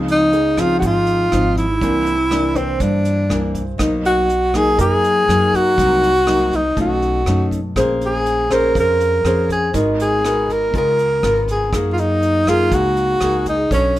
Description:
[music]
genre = bossa nova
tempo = 121 BPM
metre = 4/4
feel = straight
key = unclear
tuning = A4 = 440 Hz
[part]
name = nylon-string guitar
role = accompaniment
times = 0.0-14.0 s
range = Gb2 to Db5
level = -21 LUFS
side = left 1 dB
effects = none
[part]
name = warm concert grand piano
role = accompaniment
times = 0.0-6.0, 9.7-10.9 s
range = Eb4 to C5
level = -27 LUFS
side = right 3 dB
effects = none
[part]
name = upright bass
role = bass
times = 0.0-14.0 s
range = Ab1 to G2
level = -22 LUFS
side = equal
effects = none
[part]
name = breathy tenor saxophone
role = melody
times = 0.1-14.0 s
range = C4 to Bb4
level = -16 LUFS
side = equal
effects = none
[part]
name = vintage brush drum kit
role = drums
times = 0.1-14.0 s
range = hi-hat, kick drum, rim click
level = -27 LUFS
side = right 1 dB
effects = none
[sound]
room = light reverb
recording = minimal, uncompressed stereo recording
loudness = -14 LUFS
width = side -14 dB against mid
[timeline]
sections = 0.0-14.0 A section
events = none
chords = 0.0 Dbmaj9; 1.8 C9; 3.8 Cbmaj7; 5.8 Cm7b5; 6.8 Cb9; 7.8 Bbm9; 9.7 Abm9; 10.7 Db13; 11.7 Gb69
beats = 0.32 0.82 1.31 | 1.81 2.31 2.80 3.30 | 3.79 4.29 4.78 5.28 | 5.77 6.27 6.76 7.26 | 7.76 8.25 8.75 9.24 | 9.74 10.24 10.73 11.23 | 11.72 12.22 12.72 13.21 | 13.71

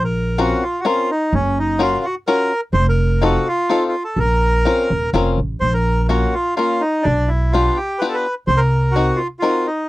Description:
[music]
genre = musette waltz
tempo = 126 BPM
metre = 3/4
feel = straight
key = Bb harmonic minor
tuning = A4 = 440 Hz
[part]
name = bandoneon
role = melody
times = 0.0-9.9 s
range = Db4 to C5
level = -19 LUFS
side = right 1 dB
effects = none
[part]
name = upright bass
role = bass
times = 0.0-9.1 s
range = Eb1 to C2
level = -18 LUFS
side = equal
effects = none
[part]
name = bluegrass banjo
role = accompaniment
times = 0.4-9.7 s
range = Bb3 to Bb4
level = -18 LUFS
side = left 3 dB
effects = none
[sound]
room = light reverb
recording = dry, close 1970s-style studio recording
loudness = -15 LUFS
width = side -18 dB against mid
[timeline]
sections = 0.0-5.6 A section; 5.6-9.9 A section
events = none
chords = 0.0 Bbmadd9; 1.3 Gbmaj7; 2.7 F7; 4.2 Bbmadd9; 5.6 Bbm; 7.1 G7/B; 8.5 Cm7b5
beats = 0.38 0.85 | 1.33 1.80 2.27 | 2.75 3.22 3.70 | 4.17 4.65 5.13 | 5.61 6.09 6.57 | 7.05 7.53 8.01 | 8.48 8.96 9.43

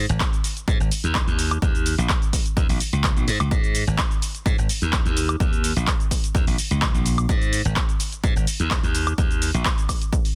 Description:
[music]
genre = filtered disco house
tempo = 127 BPM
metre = 4/4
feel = straight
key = unclear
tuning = A4 = 444 Hz
[part]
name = glassy slap bass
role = bass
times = 0.0-9.6 s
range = Ab1 to Ab2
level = -25 LUFS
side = equal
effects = tube saturation, sidechain pumping
[part]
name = punchy analog drum machine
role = drums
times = 0.1-10.3 s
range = cabasa, handclaps, hi-hat, woodblock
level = -29 LUFS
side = equal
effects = none
[part]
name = electronic kick drum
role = drums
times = 0.2-10.2 s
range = none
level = -25 LUFS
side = equal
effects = none
[sound]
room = little or no reverb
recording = dense, heavily limited modern master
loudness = -22 LUFS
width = mono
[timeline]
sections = 0.0-10.3 A section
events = none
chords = none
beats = 0.21 0.68 1.15 | 1.62 2.10 2.57 3.04 | 3.51 3.98 4.46 4.93 | 5.40 5.88 6.35 6.82 | 7.29 7.76 8.24 8.71 | 9.18 9.65 10.13

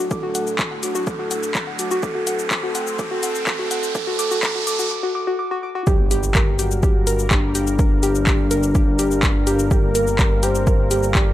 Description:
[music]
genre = melodic techno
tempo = 125 BPM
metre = 4/4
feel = straight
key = G harmonic minor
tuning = A4 = 439 Hz
[part]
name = soft octave-layered synth lead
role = melody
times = 0.0-11.3 s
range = D4 to D5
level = -24 LUFS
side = left 1 dB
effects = chorus, sidechain pumping, tape echo
[part]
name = sweeping resonant pad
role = sustained chords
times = 0.0-11.3 s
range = A2 to A5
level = -31 LUFS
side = right 1 dB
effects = chorus, sidechain pumping
[part]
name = woody wave-folded pluck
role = arpeggios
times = 0.0-11.2 s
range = F#4 to D6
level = -25 LUFS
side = equal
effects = chorus, sidechain pumping, analog delay
[part]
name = riser and impact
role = sound effects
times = 0.0-7.8 s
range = none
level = -29 LUFS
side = right 2 dB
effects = none
[part]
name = electronic kick drum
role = drums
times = 0.1-11.2 s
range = none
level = -19 LUFS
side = equal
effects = overdrive
[part]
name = punchy analog drum machine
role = drums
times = 0.1-11.2 s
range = handclaps, hi-hat, shaker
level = -25 LUFS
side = left 2 dB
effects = overdrive, sidechain pumping on hats, high-pass filter on hats, sidechain pumping on perc, high-pass filter on perc, high-pass filter on snare
[part]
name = fat analog bass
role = bass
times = 5.9-11.3 s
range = G1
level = -24 LUFS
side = equal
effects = sidechain pumping
[sound]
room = light reverb, digital ambience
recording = dry, gritty hardware recording, high-pass filter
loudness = -17 LUFS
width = side -13 dB against mid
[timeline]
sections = 0.0-5.9 A section; 5.9-11.3 B section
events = build-up 0.0-5.9; riser 0.0-4.9; filter sweep on soft synth lead 0.0-5.9; filter sweep on analog synth pad 0.0-5.9; break 4.9-5.9; drop 5.9-11.3; impact 5.9-7.8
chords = 0.0 D; 5.9 Gm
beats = | 0.11 0.59 1.07 1.55 | 2.03 2.51 2.99 3.47 | 3.95 4.43 4.91 5.39 | 5.87 6.35 6.83 7.31 | 7.79 8.27 8.75 9.23 | 9.71 10.19 10.67 11.15

